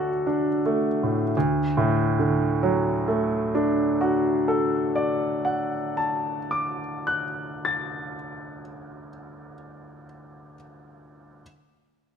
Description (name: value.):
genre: classical, romantic nocturne for solo piano.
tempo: 26-33 BPM (dotted quarters).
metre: 12/8.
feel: rubato.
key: D major.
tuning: A4 = 441 Hz.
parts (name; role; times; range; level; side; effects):
clear grand piano; solo; 0.0-11.4 s; D2 to A6; -23 LUFS; equal; none.
room: moderate concert hall reverb, RT60 1.9 s.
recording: close, detailed microphones.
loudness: -22 LUFS.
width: side -7 dB against mid.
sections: 0.0-1.3 A section; 1.3-9.1 B section.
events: none.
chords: 0.0 D.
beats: | 1.33 3.33 5.20 7.11.